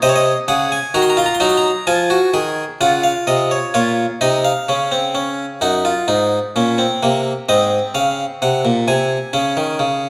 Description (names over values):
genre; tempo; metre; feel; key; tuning
classical, baroque-style 3-part fugue for harpsichord; 64 BPM; 4/4; straight; Db major; A4 = 440 Hz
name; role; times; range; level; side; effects
harpsichord; solo; 0.0-10.1 s; Gb2 to C6; -17 LUFS; equal; none
room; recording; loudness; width
wet recital hall reverb, RT60 1.3 s; none; -17 LUFS; mono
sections
0.0-3.8 A section; 3.8-10.1 B section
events
none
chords
0.0 Ab7/C; 1.9 Db; 3.8 Bbm; 5.6 Ebm/Gb; 7.5 Ab; 9.3 Db5